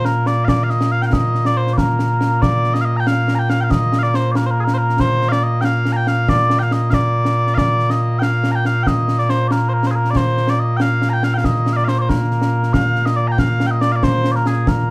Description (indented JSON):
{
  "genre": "scottish traditional, Scottish pipe music",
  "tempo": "93 BPM (dotted quarters)",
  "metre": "6/8",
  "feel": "straight",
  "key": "Bb major",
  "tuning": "A4 = 441 Hz",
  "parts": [
    { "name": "mellow small bagpipes", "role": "melody", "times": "0.0-14.9 s", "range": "Bb2 to Bb5", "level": "-18 LUFS", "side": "equal", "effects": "none" },
    { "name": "concert snare drum and concert bass drum", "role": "drums", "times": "0.0-14.8 s", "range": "none", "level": "-24 LUFS", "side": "equal", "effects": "none" }
  ],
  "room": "wet small room ambience, RT60 0.5 s",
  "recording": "band playing live in one room",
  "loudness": "-17 LUFS",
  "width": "mono",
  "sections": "0.0-2.4 A section; 2.4-12.7 B section; 12.7-14.9 C section",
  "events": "none",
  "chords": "none"
}